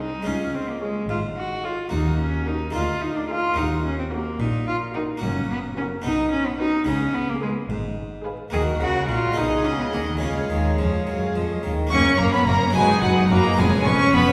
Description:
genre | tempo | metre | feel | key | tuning
classical, baroque-style concerto movement with solo episodes | 72 BPM (dotted quarters) | 6/8 | straight | F# major from 5.2 s | A4 = 441 Hz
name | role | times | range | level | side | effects
rich cello | melody | 0.0-14.3 s | F#3 to G#4 | -26 LUFS | equal | none
warm chamber violin section | melody | 0.0-14.3 s | D#5 to C#6 | -28 LUFS | equal | none
rich chamber violin section | second line | 0.0-14.3 s | Ab4 to D#5 | -35 LUFS | equal | none
harpsichord | accompaniment | 0.0-14.3 s | C2 to Ab4 | -32 LUFS | equal | none
warm chamber viola section | accompaniment | 0.0-14.3 s | A#3 to Ab4 | -32 LUFS | equal | none
rich chamber double bass section | bass | 0.0-14.2 s | E#1 to F#2 | -30 LUFS | equal | none
warm chamber cello section | bass | 0.0-14.2 s | C2 to F#3 | -32 LUFS | equal | none
room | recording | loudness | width
wet recital hall reverb, RT60 1.9 s | recorded in a church or concert hall, lossy compression artefacts | -22 LUFS | mono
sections
0.0-11.9 A section; 11.9-14.3 B section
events
none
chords
0.3 Db; 1.9 Ebm; 2.7 Bb7/D; 3.6 Ebm; 5.2 F#; 6.0 B; 6.9 C#7; 8.5 D#m; 9.4 G#m7/B; 10.2 C#; 11.9 F#; 12.8 G#m7/F#; 13.6 C#7/E#

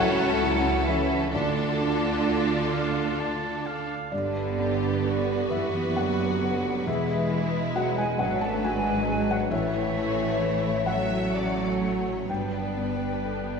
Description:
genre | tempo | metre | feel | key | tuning
cinematic | 44 BPM (dotted quarters) | 6/8 | uneven beats, rubato | G lydian | A4 = 440 Hz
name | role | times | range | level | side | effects
warm symphonic violin section | melody | 0.0-13.6 s | A4 to E5 | -35 LUFS | left 4 dB | none
mellow clarinet | second line | 0.0-13.6 s | F4 to C#5 | -33 LUFS | equal | none
mellow hollow flute section | second line | 0.0-13.6 s | D5 to A5 | -34 LUFS | right 1 dB | none
rich studio violin section | second line | 0.0-13.6 s | C#4 to G4 | -37 LUFS | left 3 dB | none
clear symphonic viola section | accompaniment | 0.0-13.6 s | F#3 to D4 | -32 LUFS | right 2 dB | none
felt-muted upright piano | accompaniment | 0.0-13.6 s | D2 to A5 | -31 LUFS | left 2 dB | none
warm French horn section | sustained chords | 0.0-13.6 s | D3 to A3 | -33 LUFS | left 2 dB | none
clear symphonic double bass section | bass | 0.0-13.6 s | E1 to D2 | -32 LUFS | right 3 dB | none
rich symphonic cello section | bass | 0.0-13.6 s | D3 to A3 | -32 LUFS | right 3 dB | none
clear oboe | second line | 2.7-4.1 s | F5 to A5 | -35 LUFS | right 3 dB | none
room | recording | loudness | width
wet concert hall reverb, RT60 1.8 s | recorded in a church or concert hall | -23 LUFS | side -5 dB against mid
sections
0.0-13.6 A section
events
none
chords
0.0 A; 1.3 Dm; 4.1 G; 6.9 Eadd9; 9.5 A; 12.3 Gadd9

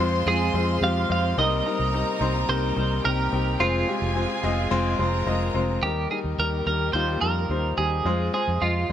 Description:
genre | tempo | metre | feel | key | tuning
piano-driven pop | 108 BPM | 4/4 | straight | F minor | A4 = 439 Hz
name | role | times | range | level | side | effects
twelve-string electric guitar | melody | 0.0-8.9 s | F4 to F5 | -26 LUFS | right 4 dB | tremolo
warm studio violin section | second line | 0.0-5.8 s | G4 to C6 | -32 LUFS | equal | tape echo
clear concert grand piano | accompaniment | 0.0-8.9 s | C3 to Eb5 | -26 LUFS | left 3 dB | none
clear studio string section | sustained chords | 0.0-8.9 s | C3 to G4 | -36 LUFS | equal | none
vintage muted fingered electric bass | bass | 0.0-8.9 s | F1 to F2 | -26 LUFS | right 1 dB | none
room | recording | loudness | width
moderate large studio reverb, RT60 0.9 s, small room ambience | none | -21 LUFS | side -10 dB against mid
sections
0.0-5.8 A section; 5.8-8.9 B section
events
none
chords
0.0 Fm; 1.4 Cm7; 3.6 Fm; 5.8 Eb; 8.1 Fm

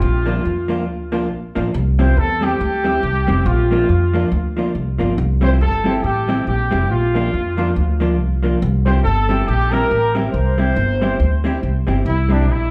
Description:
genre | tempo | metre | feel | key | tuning
ska | 140 BPM | 4/4 | swing 58% on 8ths | C mixolydian | A4 = 440 Hz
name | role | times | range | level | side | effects
mellow horn section | melody | 0.0-12.7 s | D4 to C5 | -23 LUFS | equal | analog delay
upright bass | bass | 0.0-12.7 s | F1 to F2 | -20 LUFS | equal | none
vintage hollow-body jazz guitar | accompaniment | 0.3-12.4 s | F3 to G4 | -24 LUFS | equal | analog delay
room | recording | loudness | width
wet large studio reverb, RT60 0.8 s | band playing live in one room | -18 LUFS | mono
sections
0.0-12.0 A section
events
none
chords
0.0 Bb; 1.7 C; 3.5 Bb; 5.2 C; 6.9 Bb; 8.6 C

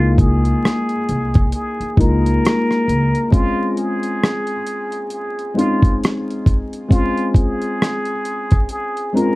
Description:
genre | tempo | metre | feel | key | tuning
lo-fi hip hop | 67 BPM | 4/4 | swing 59% on 16ths | unclear | A4 = 440 Hz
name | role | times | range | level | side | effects
trumpet with plunger mute | melody | 0.0-9.4 s | F4 to Bb4 | -24 LUFS | equal | low-pass filter, tape echo
felt-muted upright piano | accompaniment | 0.0-9.4 s | Ab3 to F4 | -20 LUFS | left 1 dB | cassette tape, low-pass filter
upright bass | bass | 0.0-3.1 s | C2 to Db2 | -18 LUFS | equal | none
dusty soul sampler-style drum kit | drums | 0.2-9.4 s | hi-hat, kick drum, rim click | -15 LUFS | equal | overdrive
room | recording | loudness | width
light reverb | dark, warm production, vinyl crackle | -15 LUFS | side -20 dB against mid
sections
0.0-9.4 A section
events
break 3.3-9.4; kick muted 8.7-9.4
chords
0.0 Db69; 3.3 Dbmaj9/Ab; 6.9 Bbm9 (rootless)

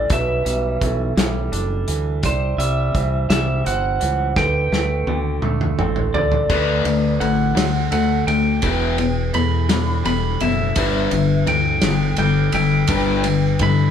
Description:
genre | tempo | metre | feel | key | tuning
post-rock | 56 BPM (dotted quarters) | 6/8 | straight | E minor | A4 = 441 Hz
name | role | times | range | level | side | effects
lightly driven lead guitar | melody | 0.0-13.9 s | C5 to B5 | -24 LUFS | right 1 dB | none
twangy electric guitar | arpeggios | 0.0-13.9 s | E2 to E4 | -28 LUFS | equal | none
vibraphone with medium hard mallets | arpeggios | 0.0-13.9 s | A4 to D5 | -27 LUFS | right 7 dB | none
growling fingered electric bass | bass | 0.0-13.9 s | E1 to G2 | -23 LUFS | right 1 dB | overdrive
loose indie drum kit | drums | 0.1-13.8 s | crash cymbal, hi-hat, kick drum, ride cymbal, snare drum, toms | -23 LUFS | equal | none
cranked stack guitar | riff | 6.5-13.9 s | E2 to D4 | -19 LUFS | left 6 dB | overdrive
room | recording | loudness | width
moderate studio reverb, RT60 0.6 s | band playing live in one room | -16 LUFS | side -8 dB against mid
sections
0.0-6.5 A section; 6.5-13.9 B section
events
drum fill 4.4-6.5; build-up 6.5-13.9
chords
0.1 Em7/B; 2.2 C; 4.4 D7sus4; 8.6 Em7; 10.8 G6

